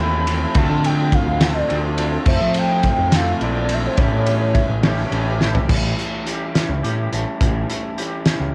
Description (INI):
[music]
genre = indie rock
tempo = 70 BPM (dotted quarters)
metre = 6/8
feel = straight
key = unclear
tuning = A4 = 444 Hz
[part]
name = hollow square lead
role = melody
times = 0.0-5.1 s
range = C5 to B5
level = -26 LUFS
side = equal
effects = chorus, analog delay
[part]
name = soft synth bell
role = second line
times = 0.0-5.4 s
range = C5 to G5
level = -37 LUFS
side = equal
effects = none
[part]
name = electric guitar through a small old amp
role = riff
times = 0.0-8.5 s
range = A2 to F4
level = -28 LUFS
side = equal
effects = cassette tape
[part]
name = twangy electric guitar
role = riff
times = 0.0-8.5 s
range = E3 to G4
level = -30 LUFS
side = equal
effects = analog chorus, cassette tape, analog delay
[part]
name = growling picked electric bass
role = bass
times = 0.0-8.5 s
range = A1 to F3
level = -24 LUFS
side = equal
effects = overdrive
[part]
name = loose indie drum kit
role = drums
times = 0.3-8.4 s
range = crash cymbal, hi-hat, kick drum, ride cymbal, snare drum, toms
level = -23 LUFS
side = equal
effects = cassette tape
[sound]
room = light reverb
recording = home recording on cassette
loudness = -19 LUFS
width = mono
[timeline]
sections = 0.0-5.7 A section; 5.7-8.5 B section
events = drum fill 5.4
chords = 0.0 Fmaj7; 0.6 Dm7; 2.3 Fmaj7; 4.0 A7